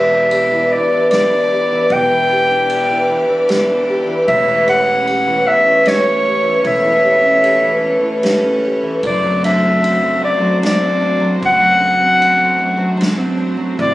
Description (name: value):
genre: acoustic folk-pop ballad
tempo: 76 BPM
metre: 3/4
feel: straight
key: unclear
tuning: A4 = 439 Hz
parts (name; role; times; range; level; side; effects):
- clear clarinet; melody; 0.0-13.9 s; C#5 to G5; -14 LUFS; equal; none
- fingerpicked steel-string acoustic guitar; accompaniment; 0.0-13.9 s; E2 to G4; -16 LUFS; equal; none
- warm studio string section; sustained chords; 0.0-13.9 s; A3 to D5; -23 LUFS; left 1 dB; none
- upright bass; bass; 0.0-13.9 s; E1 to A1; -30 LUFS; equal; none
- unplugged drum kit; drums; 0.3-13.9 s; kick drum, ride cymbal, snare drum; -26 LUFS; right 1 dB; none
room: moderate booth ambience, RT60 0.2 s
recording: recorded on a phone in the room, studio reverb, compression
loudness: -12 LUFS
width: side -16 dB against mid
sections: 0.0-13.9 A section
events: none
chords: 0.0 Em7; 4.3 A7/E; 9.0 D7/F#